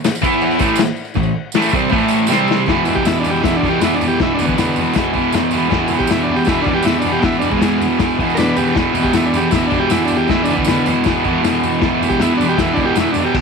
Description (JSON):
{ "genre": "garage rock duo or trio", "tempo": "157 BPM", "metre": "4/4", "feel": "straight", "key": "unclear", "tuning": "A4 = 441 Hz", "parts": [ { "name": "fuzz guitar", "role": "riff", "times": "0.0-13.4 s", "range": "E2 to E4", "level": "-15 LUFS", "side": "right 1 dB", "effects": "distortion" }, { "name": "vintage drum kit", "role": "drums", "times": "0.0-13.4 s", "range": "crash cymbal, kick drum, snare drum, toms", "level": "-20 LUFS", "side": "left 4 dB", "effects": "none" }, { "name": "tambourine", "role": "percussion", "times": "0.0-13.2 s", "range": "none", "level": "-33 LUFS", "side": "right 18 dB", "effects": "none" }, { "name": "overdriven combo organ", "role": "melody", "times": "2.9-13.4 s", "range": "D3 to B4", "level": "-21 LUFS", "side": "right 1 dB", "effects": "none" } ], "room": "light reverb, small room ambience", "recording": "1960s-style stereo", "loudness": "-13 LUFS", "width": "side -5 dB against mid", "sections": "0.0-2.7 A section; 2.7-13.4 B section", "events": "drum fill 2.3-2.7", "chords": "0.2 E5; 0.6 A5; 2.3 C5; 2.7 E5", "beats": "0.05 0.42 0.80 | 1.17 1.55 1.93 2.30 | 2.68 3.06 3.44 3.82 | 4.20 4.58 4.96 5.34 | 5.72 6.10 6.48 6.86 | 7.25 7.63 8.01 8.39 | 8.77 9.16 9.54 9.92 | 10.30 10.69 11.07 11.45 | 11.83 12.21 12.59 12.97 | 13.36" }